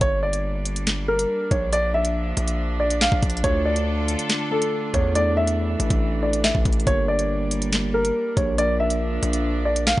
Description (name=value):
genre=hip hop, drill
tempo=140 BPM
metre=4/4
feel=half-time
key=unclear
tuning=A4 = 440 Hz
part: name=dark concert grand piano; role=melody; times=0.0-10.0 s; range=A4 to F5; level=-24 LUFS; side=equal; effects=analog delay
part: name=warm studio string section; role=sustained chords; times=0.0-10.0 s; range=D3 to A4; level=-30 LUFS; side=equal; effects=none
part: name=distorted 808-style bass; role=bass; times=0.0-10.0 s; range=G1 to E2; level=-25 LUFS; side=equal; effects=distortion
part: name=drill drum kit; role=drums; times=0.0-10.0 s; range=handclaps, hi-hat, kick drum, snare drum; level=-23 LUFS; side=equal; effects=none
part: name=mellow tine electric piano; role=accompaniment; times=3.4-10.0 s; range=A3 to Bb4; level=-28 LUFS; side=equal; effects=medium stereo tremolo
room=little or no reverb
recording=dry, gritty hardware recording, nothing above 10.6 kHz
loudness=-20 LUFS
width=side -17 dB against mid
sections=0.0-10.0 A section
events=none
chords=0.0 Gm; 1.7 Bb; 3.4 Dm; 5.2 Asus4; 6.9 Gm; 8.6 Bb